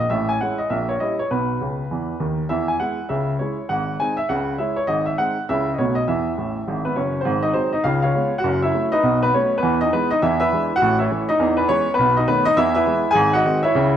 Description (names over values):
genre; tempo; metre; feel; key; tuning
jazz, stride piano; 202 BPM; 4/4; swing 62% on 8ths; E major; A4 = 440 Hz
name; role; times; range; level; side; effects
clear upright piano; solo; 0.0-14.0 s; F#1 to G#5; -18 LUFS; equal; none
room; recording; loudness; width
wet stone room reverb, RT60 1.5 s; band playing live in one room; -18 LUFS; side -9 dB against mid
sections
0.0-7.3 A section; 7.3-14.0 B section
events
upright piano fill 1.6-2.5, 6.4-7.3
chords
0.1 Amaj7; 0.7 A#dim7; 1.3 Bsus2; 1.9 B; 2.5 E; 3.1 C#m; 3.7 G#7; 4.3 C#m; 4.9 G#7; 5.5 C#m; 5.8 B7; 6.1 E; 7.3 G#7; 7.8 C#7; 8.4 F#m; 9.0 B9; 9.6 E; 10.2 E7; 10.8 A; 11.4 E; 12.0 B9; 12.6 E; 13.2 G#7